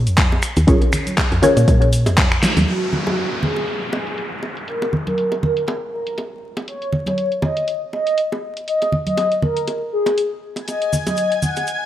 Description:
deep house; 120 BPM; 4/4; swing 56% on 16ths; A4 = 440 Hz
filtered dub chord stab; stabs; 0.0-2.4 s; Db4 to Db5; -18 LUFS; left 1 dB; phaser, cassette tape, sidechain pumping, digital delay
woody FM bass; bass; 0.0-2.7 s; Bb1 to Bb2; -17 LUFS; equal; sidechain pumping
deep house drum kit; drums; 0.1-11.8 s; finger snaps, handclaps, hi-hat, snare drum; -22 LUFS; equal; low-pass filter on hats, low-pass filter on snare, gated reverb
cabasa; percussion; 0.1-2.7, 10.7-11.8 s; -32 LUFS; left 2 dB
electronic kick drum; drums; 0.2-2.3 s; -17 LUFS; equal
bongos and congas; percussion; 0.3-11.7 s; -23 LUFS; right 1 dB
mellow horn-like synth lead; melody; 2.7-11.8 s; Gb4 to Gb5; -21 LUFS; equal; phaser, wide subtle chorus, digital delay
downlifter; sound effects; 2.7-6.7 s; -28 LUFS; left 1 dB
dark studio violin section; texture; 10.7-11.9 s; Ab5 to Ab6; -26 LUFS; left 1 dB; sidechain pumping
moderate plate reverb, RT60 1.7 s, digital ambience; bright 1980s-style digital production, vinyl crackle; -17 LUFS; side -12 dB against mid
0.0-2.7 A section; 2.7-11.9 B section
drum fill 2.4; band accent 2.4; filter sweep on drum 2.7-11.9
0.0 Bbm7; 2.7 N.C.

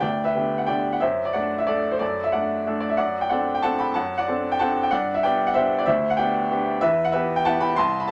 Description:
classical, piano waltz; 186 BPM; 3/4; uneven beats, rubato; G major; A4 = 440 Hz
bright upright piano; solo; 0.0-8.1 s; C2 to C6; -23 LUFS; equal
moderate studio reverb, RT60 0.9 s; -23 LUFS; mono
0.0-8.1 A section
0.0 G; 1.0 D/F#; 3.0 D7/F#; 4.9 G; 6.8 Em

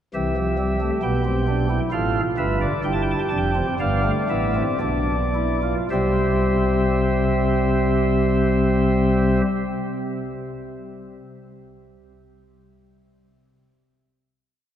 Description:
classical, baroque-style 4-part fugue for pipe organ; 53-68 BPM; 3/4; straight; C major; A4 = 438 Hz
pipe organ, flutes; solo; 0.1-9.4 s; F1 to A5; -19 LUFS; equal
wet cathedral reverb, RT60 4.3 s; dark, warm production; -19 LUFS; side -10 dB against mid
0.1-5.9 exposition; 5.9-9.3 final chord
slowing down 0.1-7.6
0.1 C; 1.9 F/A; 2.8 G7; 5.9 C

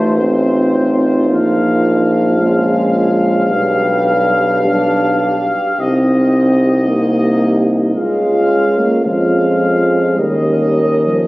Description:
classical, hymn-like piece for brass band; 54 BPM; 4/4; rubato; A4 = 439 Hz
clear trumpet section; melody; 0.0-11.3 s; C5 to F5; -19 LUFS; left 1 dB
mellow French horn section; second line; 0.0-11.3 s; F4 to Bb4; -20 LUFS; right 1 dB
mellow trombone; accompaniment; 0.0-11.3 s; F3 to D4; -16 LUFS; equal
warm euphonium; accompaniment; 0.0-11.3 s; Db4 to Eb4; -23 LUFS; left 1 dB
clear tuba; bass; 0.0-11.3 s; A1 to F2; -16 LUFS; equal
moderate church reverb, RT60 3.1 s; recorded on a phone in the room, studio reverb; -11 LUFS; side -19 dB against mid
0.0-11.3 A section
0.0 F7/A; 1.3 Bbm; 3.5 G7/B; 5.8 Cm; 8.0 Db; 10.2 Eb7

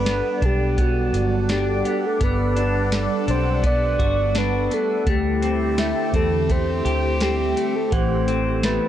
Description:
dream pop; 84 BPM; 4/4; straight; G major; A4 = 439 Hz
soft octave-layered synth lead; melody; 0.0-8.9 s; F#4 to D5; -24 LUFS; equal; chorus, digital delay
phased analog pad; sustained chords; 0.0-8.9 s; D3 to F#5; -26 LUFS; right 2 dB; phaser, chorus
clean electric guitar; arpeggios; 0.0-8.9 s; E3 to G4; -26 LUFS; left 4 dB; lush chorus, digital delay
vintage muted fingered electric bass; bass; 0.0-8.8 s; G1 to E2; -24 LUFS; equal
worn celesta; texture; 0.0-8.9 s; D5 to F#5; -36 LUFS; equal; digital delay
soft vintage rhythm box; drums; 0.1-8.8 s; hi-hat, kick drum, snare drum; -24 LUFS; equal
light reverb; dark, warm production; -18 LUFS; side -11 dB against mid
0.0-8.9 A section
0.0 Gmaj7; 5.1 D7sus4; 7.9 Am7

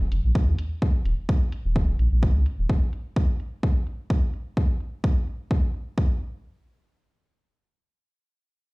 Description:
dub techno; 128 BPM; 4/4; swing 55% on 16ths; Eb minor; A4 = 440 Hz
pure sine sub bass; bass; 0.0-2.7 s; Eb1 to Eb2; -22 LUFS; equal; sidechain pumping
electronic hi-hat; drums; 0.1-6.3 s; -54 LUFS; equal; low-pass filter on hats, dub echo
electronic kick drum; drums; 0.4-6.1 s; -23 LUFS; equal; overdrive
little or no reverb; played on a big sound system in a bare room, large studio reverb; -22 LUFS; side -26 dB against mid
0.0-6.4 A section; 6.4-8.7 B section
filter sweep on drum 0.0-6.4

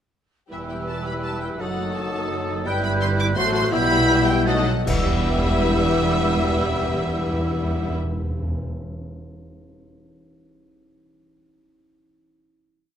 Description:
classical, dramatic, fast romantic movement for symphony orchestra; 146-172 BPM; 3/4; rubato; E minor; A4 = 438 Hz
rich symphonic violin section; melody; 0.5-8.0 s; E5 to D6; -30 LUFS; left 3 dB
flute section; second line; 0.5-8.0 s; D#6 to A6; -30 LUFS; right 3 dB
mellow clarinet; second line; 0.5-8.0 s; E4 to G4; -33 LUFS; left 2 dB
mellow oboe; second line; 0.5-8.0 s; A4 to E5; -31 LUFS; right 1 dB
warm symphonic violin section; second line; 0.5-8.0 s; E4 to E5; -30 LUFS; left 3 dB
clear bassoon; accompaniment; 0.5-8.0 s; E3 to B3; -31 LUFS; right 2 dB
rich symphonic viola section; accompaniment; 0.5-8.0 s; D#3 to F#4; -30 LUFS; right 1 dB
warm French horn section; sustained chords; 0.5-8.0 s; F#3 to F#4; -28 LUFS; left 4 dB
concert harp; arpeggios; 0.5-8.8 s; E2 to G5; -32 LUFS; left 9 dB
clear symphonic cello section; bass; 0.5-8.0 s; E2 to B2; -29 LUFS; right 3 dB
rich symphonic double bass section; bass; 0.5-8.0 s; E1 to B1; -29 LUFS; right 3 dB
cymbal swell, clash cymbals and concert bass drum; percussion; 2.7-5.6 s; -29 LUFS; equal
timpani; percussion; 4.5-8.7 s; E2 to B2; -27 LUFS; equal
moderate concert hall reverb, RT60 2.1 s; close, detailed microphones; -19 LUFS; side -9 dB against mid
0.5-4.9 A section; 4.9-7.2 final chord
slowing down 2.1-4.9; timpani fill 4.5-4.9; band accent 4.9-5.2
0.5 Em; 1.6 D#dim/F#; 2.7 Em/G; 3.4 F#dim/A; 3.7 Em/B; 4.5 B7; 4.9 Em

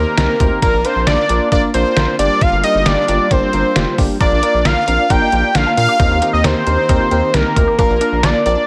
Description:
synth-pop; 134 BPM; 4/4; straight; Bb major; A4 = 440 Hz
fat analog lead; melody; 0.0-8.7 s; Bb4 to G5; -18 LUFS; equal
FM electric piano; accompaniment; 0.0-8.6 s; Bb3 to C5; -23 LUFS; equal; chorus
brassy analog pad; sustained chords; 0.0-8.7 s; Eb3 to Bb4; -27 LUFS; equal; chorus
rubbery square bass; bass; 0.0-8.6 s; F1 to Bb2; -21 LUFS; equal
detuned 8-bit digital drum machine; drums; 0.2-8.6 s; hi-hat, kick drum, snare drum; -20 LUFS; equal; gated reverb
resonant blip pluck; arpeggios; 4.2-8.7 s; C4 to G4; -31 LUFS; equal
light reverb, digital ambience; -14 LUFS; mono
0.0-8.7 A section
0.0 Eb6; 0.6 Bb; 2.2 Gm7; 4.2 Bb; 6.0 Eb6; 7.8 Bb

